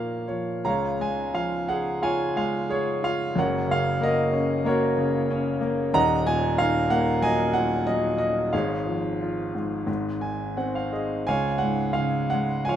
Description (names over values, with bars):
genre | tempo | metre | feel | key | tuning
classical, lyrical solo piano | 77-94 BPM | 4/4 | rubato | Db major | A4 = 438 Hz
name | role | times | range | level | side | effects
clear concert grand piano | solo | 0.0-12.8 s | Eb1 to Bb5 | -22 LUFS | equal | none
room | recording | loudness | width
moderate recital hall reverb, RT60 1.6 s | none | -22 LUFS | side -10 dB against mid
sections
0.6-12.8 A section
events
grand piano fill 0.0-0.6, 9.9-11.3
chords
0.0 Bbm; 0.6 Db; 3.4 Gb; 5.9 Ebm; 8.5 Db/Ab; 9.9 Ab; 11.3 Db